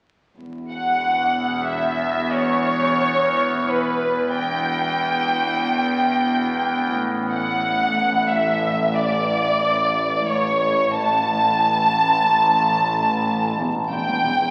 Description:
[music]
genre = cinematic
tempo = free time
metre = none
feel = none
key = E dorian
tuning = A4 = 440 Hz
[part]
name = warm studio cello section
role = bass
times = 0.4-14.5 s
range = E2 to A2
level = -31 LUFS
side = equal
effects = none
[part]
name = warm studio double bass section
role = bass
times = 0.4-14.3 s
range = E1 to A1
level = -34 LUFS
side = equal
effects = none
[part]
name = overtone-sweeping drone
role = drone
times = 1.0-14.5 s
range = A1 to E2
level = -28 LUFS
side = equal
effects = chorus, built-in reverb
[part]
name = clear studio violin section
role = melody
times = 0.7-14.5 s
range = B4 to A5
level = -22 LUFS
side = equal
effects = none
[sound]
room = wet scoring stage reverb, RT60 2.0 s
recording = very old 78 rpm record, vinyl crackle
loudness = -20 LUFS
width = mono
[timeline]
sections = 0.4-14.5 A section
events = none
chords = 0.4 Em; 7.0 N.C.; 13.6 Em

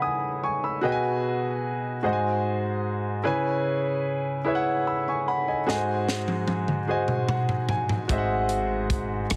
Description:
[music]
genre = slow gospel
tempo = 50 BPM (dotted quarters)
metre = 6/8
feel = straight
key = unclear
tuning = A4 = 440 Hz
[part]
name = clear grand piano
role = accompaniment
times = 0.0-9.4 s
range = G#2 to E6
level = -27 LUFS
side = equal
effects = none
[part]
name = crisp fusion drum kit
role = drums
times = 5.7-9.4 s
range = hi-hat, kick drum, rim click, snare drum, toms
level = -30 LUFS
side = equal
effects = none
[part]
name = upright bass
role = bass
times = 8.1-9.4 s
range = F#1 to G#1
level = -33 LUFS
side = equal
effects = none
[sound]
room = light reverb, studio reverb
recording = heavily compressed radio sound, multiband compression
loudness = -26 LUFS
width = mono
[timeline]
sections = 0.0-9.4 A section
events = drum fill 5.7-8.1; grand piano fill 6.9-8.1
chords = 0.0 C#m7; 0.8 G#m7/B; 2.0 G#7; 3.3 C#m7; 5.7 G#7

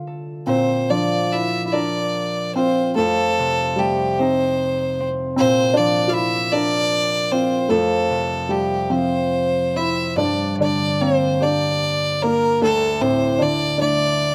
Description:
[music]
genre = celtic folk, Celtic slow air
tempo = 46-52 BPM (dotted quarters)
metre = 6/8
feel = rubato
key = unclear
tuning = A4 = 442 Hz
[part]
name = concert harp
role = accompaniment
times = 0.0-14.3 s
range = D2 to Bb4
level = -26 LUFS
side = equal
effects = none
[part]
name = bright fiddle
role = melody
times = 0.5-14.3 s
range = G4 to F5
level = -23 LUFS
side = equal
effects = none
[part]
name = felt-muted upright piano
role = second line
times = 0.5-14.3 s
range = G3 to F4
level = -24 LUFS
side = equal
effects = none
[sound]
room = little or no reverb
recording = recorded outdoors, with no room sound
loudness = -20 LUFS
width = mono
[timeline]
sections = 0.5-14.3 A section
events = none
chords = 0.5 Bb; 3.0 F7; 5.4 Bb; 7.7 F; 10.2 Gm; 12.6 D5

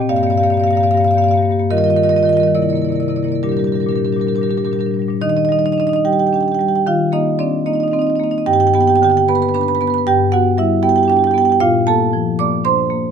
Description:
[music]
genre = classical, contemporary piece for solo marimba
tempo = 66-78 BPM (dotted quarters)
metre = 6/8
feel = rubato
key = Bb major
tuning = A4 = 437 Hz
[part]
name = marimba with medium mallets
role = solo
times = 0.0-13.1 s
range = G2 to D6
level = -13 LUFS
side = right 1 dB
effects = none
[sound]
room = light reverb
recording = none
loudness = -13 LUFS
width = side -7 dB against mid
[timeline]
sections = 0.0-5.2 A section; 5.2-13.1 B section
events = none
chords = 0.1 Gm7; 1.7 Ebadd9; 2.5 C9; 3.4 Bb6; 5.2 Ebmaj7; 6.9 Cm11/Eb; 8.5 G; 10.1 Gmaj7; 11.6 Bbmaj7

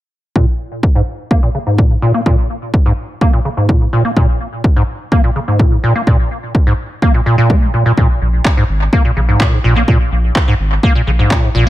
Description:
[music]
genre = acid house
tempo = 126 BPM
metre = 4/4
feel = straight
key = Bb minor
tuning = A4 = 440 Hz
[part]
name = acid bass, square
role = riff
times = 0.4-11.7 s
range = Ab2 to Bb3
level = -15 LUFS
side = equal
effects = tube saturation, wide subtle chorus, vintage 12-bit sampler grit, analog delay
[part]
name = electronic kick drum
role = drums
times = 0.4-11.4 s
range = none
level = -12 LUFS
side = equal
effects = none
[part]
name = saturated sub bass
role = bass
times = 8.2-11.7 s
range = Ab1 to Bb1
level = -14 LUFS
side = equal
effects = sidechain pumping
[part]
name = electronic handclaps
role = drums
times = 8.5-11.4 s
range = none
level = -21 LUFS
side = equal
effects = low-pass filter on snare, analog delay
[sound]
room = light reverb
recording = echo-heavy mix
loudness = -11 LUFS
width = side -15 dB against mid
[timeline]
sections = 0.4-11.7 A section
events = filter sweep on acid bass 0.4-11.7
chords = 0.4 Bb7(no3)

